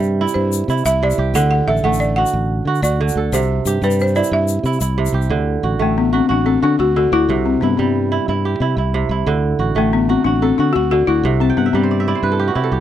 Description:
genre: west african traditional, West African string and xylophone music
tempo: 121 BPM (dotted quarters)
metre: 12/8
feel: straight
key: D mixolydian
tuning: A4 = 439 Hz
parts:
  - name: balafon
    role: melody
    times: 0.0-12.2 s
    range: A3 to F#5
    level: -18 LUFS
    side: left 4 dB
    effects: none
  - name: kora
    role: arpeggios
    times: 0.0-12.8 s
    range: C3 to A5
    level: -19 LUFS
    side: right 6 dB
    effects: none
  - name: fingered electric bass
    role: bass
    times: 0.0-12.8 s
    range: A1 to D3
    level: -19 LUFS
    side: equal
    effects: none
  - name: tube shaker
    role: percussion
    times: 0.0-5.3 s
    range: none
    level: -30 LUFS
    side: left 21 dB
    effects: none
room: little or no reverb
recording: dry, close 1970s-style studio recording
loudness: -14 LUFS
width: side -11 dB against mid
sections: 0.0-5.3 A section; 5.3-12.8 B section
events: balafon solo 0.0-5.3; kora fill 11.4-12.8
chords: 0.0 C; 1.4 D; 3.3 C; 5.3 D; 7.3 C; 9.3 D; 11.2 C

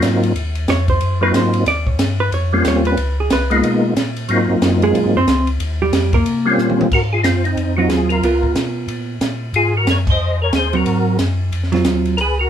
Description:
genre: soul jazz organ trio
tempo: 183 BPM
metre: 4/4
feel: swing 61% on 8ths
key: Ab mixolydian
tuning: A4 = 440 Hz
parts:
  - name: percussive tonewheel organ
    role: melody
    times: 0.0-12.5 s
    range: Gb3 to Eb5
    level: -17 LUFS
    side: left 1 dB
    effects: slow rotary speaker, chorus vibrato
  - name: mellow tonewheel organ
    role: bass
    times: 0.0-12.5 s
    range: C2 to C3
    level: -20 LUFS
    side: left 1 dB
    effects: chorus vibrato, slow rotary speaker
  - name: compact cocktail drum kit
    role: drums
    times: 0.0-12.3 s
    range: crash cymbal, hi-hat, kick drum, ride cymbal, snare drum, toms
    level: -22 LUFS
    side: equal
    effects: none
  - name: hollow-body jazz guitar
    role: accompaniment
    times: 0.7-12.2 s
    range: Gb3 to D5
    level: -18 LUFS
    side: right 3 dB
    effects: none
room: moderate studio ambience, RT60 0.4 s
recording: band playing live in one room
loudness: -14 LUFS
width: side -9 dB against mid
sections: 0.0-6.9 A section; 6.9-12.5 B section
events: hollow-body jazz guitar solo 0.0-6.9; drum fill 6.6-6.9; band accent 10.0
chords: 0.0 Ab13; 1.7 Eb13; 3.0 Db13; 4.3 Ab13; 5.6 Eb13; 6.9 Ab6; 8.2 Db6; 9.5 Ab13

